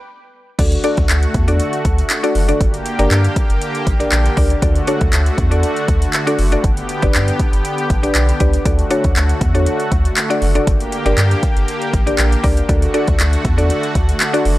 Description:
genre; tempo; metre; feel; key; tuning
dance-pop; 119 BPM; 4/4; straight; D major; A4 = 440 Hz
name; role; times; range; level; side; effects
mallet-like synth pluck; accompaniment; 0.6-14.5 s; D4 to D5; -20 LUFS; left 1 dB; chorus, sidechain pumping
lush unison pad; sustained chords; 0.6-14.6 s; D3 to G4; -22 LUFS; equal; chorus, sidechain pumping
round analog bass; bass; 0.6-14.6 s; F#1 to G2; -16 LUFS; equal; sidechain pumping
deep house drum kit; drums; 0.6-14.6 s; crash cymbal, handclaps, hi-hat, kick drum; -18 LUFS; equal; overdrive
room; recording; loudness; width
little or no reverb; dry, gritty hardware recording; -13 LUFS; side -16 dB against mid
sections
0.6-14.6 A section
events
stop 0.0-0.6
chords
0.0 N.C.; 0.6 D; 2.6 Gm; 4.6 D; 6.6 G; 8.7 D; 10.7 Gm; 12.7 D

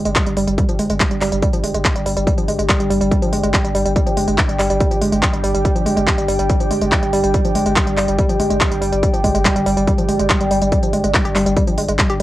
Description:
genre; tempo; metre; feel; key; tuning
driving peak-time techno; 142 BPM; 4/4; straight; unclear; A4 = 440 Hz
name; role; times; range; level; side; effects
woody wave-folded pluck; riff; 0.0-12.2 s; F3 to G4; -19 LUFS; right 1 dB; chorus, sidechain pumping, cassette tape, tape echo
saturated sub bass; bass; 0.0-12.2 s; G1; -24 LUFS; equal; tube saturation, sidechain pumping, low-pass filter
deep dark ambient pad; texture; 0.0-12.2 s; G4 to G5; -22 LUFS; equal; chorus, built-in reverb, sidechain pumping, cassette tape
techno drum kit; drums; 0.1-12.2 s; handclaps, hi-hat; -22 LUFS; equal; sidechain pumping on hats, cassette tape
electronic kick drum; drums; 0.2-12.1 s; none; -19 LUFS; equal; cassette tape
room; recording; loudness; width
light reverb; home recording on cassette; -14 LUFS; side -15 dB against mid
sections
0.0-12.2 A section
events
none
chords
0.0 G5

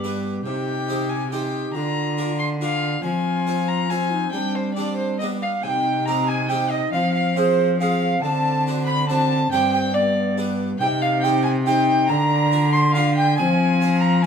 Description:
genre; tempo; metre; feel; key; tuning
classical, renaissance-style consort dance; 140 BPM; 3/4; straight; C minor; A4 = 443 Hz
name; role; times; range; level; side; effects
mellow tenor recorder; second line; 0.0-14.3 s; D4 to C6; -23 LUFS; right 3 dB; none
dark trombone; accompaniment; 0.0-14.2 s; B3 to Eb4; -26 LUFS; left 3 dB; none
harpsichord; accompaniment; 0.0-14.3 s; G2 to C5; -29 LUFS; equal; none
rich cello; bass; 0.0-14.3 s; G2 to G3; -23 LUFS; equal; none
dark violin; melody; 0.5-14.3 s; C5 to C6; -27 LUFS; left 5 dB; none
room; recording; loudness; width
wet stone room reverb, RT60 1.1 s; heard from further back in the room; -18 LUFS; side -7 dB against mid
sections
0.0-5.6 A section; 5.6-14.3 A section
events
none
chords
0.5 Cm; 1.8 Bb/D; 3.0 Fm; 4.3 Gsus4; 5.2 G; 5.6 Cm; 6.9 Fm; 8.2 D7; 9.5 Gsus4; 9.9 G; 10.8 Cm; 12.1 Bb/D; 13.4 Fm

